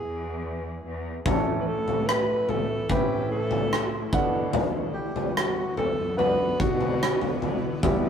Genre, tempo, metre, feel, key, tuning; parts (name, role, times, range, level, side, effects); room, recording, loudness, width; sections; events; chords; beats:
pop ballad; 73 BPM; 4/4; straight; B minor; A4 = 440 Hz
warm alto saxophone; melody; 0.0-7.4 s; F#4 to B4; -29 LUFS; left 1 dB; tape echo
rich studio cello section; bass; 0.0-8.1 s; E2 to B2; -34 LUFS; right 1 dB
shimmering ambient pad; sustained chords; 2.4-8.1 s; C#3 to F#5; -36 LUFS; equal; chorus, built-in reverb
warm baby grand piano; accompaniment; 1.3-8.1 s; A2 to F#5; -30 LUFS; equal
huge arena drum kit; drums; 1.3-8.0 s; kick drum, rim click, toms; -26 LUFS; equal
light reverb; rough rehearsal-room recording; -23 LUFS; side -7 dB against mid
0.0-8.1 A section
0.0 E; 1.3 A; 4.1 Bm
0.44 | 1.26 2.08 2.90 3.73 | 4.55 5.37 6.19 7.01 | 7.83